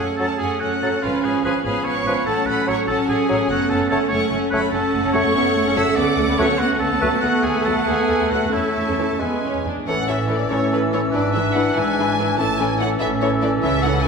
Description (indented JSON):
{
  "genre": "quick classical-period movement for symphony orchestra",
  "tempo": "96 BPM (dotted quarters)",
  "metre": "6/8",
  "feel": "rubato",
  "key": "F# minor, A major from 4.7 s",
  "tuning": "A4 = 439 Hz",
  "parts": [
    { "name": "rich chamber violin section", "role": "melody", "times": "0.0-14.1 s", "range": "B4 to A5", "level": "-27 LUFS", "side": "left 3 dB", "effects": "none" },
    { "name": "rich chamber violin section", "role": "second line", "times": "0.0-14.1 s", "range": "E4 to E6", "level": "-29 LUFS", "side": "left 2 dB", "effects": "none" },
    { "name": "warm oboe", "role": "second line", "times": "0.0-14.1 s", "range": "E4 to E5", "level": "-25 LUFS", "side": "right 1 dB", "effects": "none" },
    { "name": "rich chamber viola section", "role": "accompaniment", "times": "0.0-14.1 s", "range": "E3 to B4", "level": "-25 LUFS", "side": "right 2 dB", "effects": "none" },
    { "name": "mellow French horn section", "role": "sustained chords", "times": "0.0-14.1 s", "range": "E3 to D4", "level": "-25 LUFS", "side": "left 2 dB", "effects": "none" },
    { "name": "rich symphonic double bass section", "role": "bass", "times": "0.0-14.1 s", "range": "F#1 to F#2", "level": "-29 LUFS", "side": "right 2 dB", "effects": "none" },
    { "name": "bright clarinet", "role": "second line", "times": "0.2-14.1 s", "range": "C#4 to C#5", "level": "-29 LUFS", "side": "left 1 dB", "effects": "none" },
    { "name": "warm bassoon", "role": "accompaniment", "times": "0.2-14.1 s", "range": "E3 to A3", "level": "-28 LUFS", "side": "equal", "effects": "none" },
    { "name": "rich studio cello section", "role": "bass", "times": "0.4-14.1 s", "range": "G#2 to C#4", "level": "-26 LUFS", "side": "right 5 dB", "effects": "none" },
    { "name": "silver concert flute", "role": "second line", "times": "9.9-14.1 s", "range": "E6", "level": "-29 LUFS", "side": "left 2 dB", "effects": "none" }
  ],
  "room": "wet scoring stage reverb, RT60 1.6 s",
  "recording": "minimal, uncompressed stereo recording",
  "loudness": "-17 LUFS",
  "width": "side -5 dB against mid",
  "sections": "0.0-9.9 A section; 9.9-14.1 B section",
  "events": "none",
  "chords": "0.0 F#m; 1.0 C#7/G#; 2.3 F#m/A; 3.5 F#m; 6.0 Bm7/D; 7.2 B7/D#; 8.5 A; 9.2 E; 9.9 A; 11.1 E7/G#; 12.4 A",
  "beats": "0.40 | 1.03 1.65 | 2.26 2.89 | 3.50 4.12 | 4.74 5.36 | 5.97 6.60 | 7.23 7.88 | 8.53 9.21 | 9.87 10.51 | 11.14 11.77 | 12.39 13.01 | 13.63"
}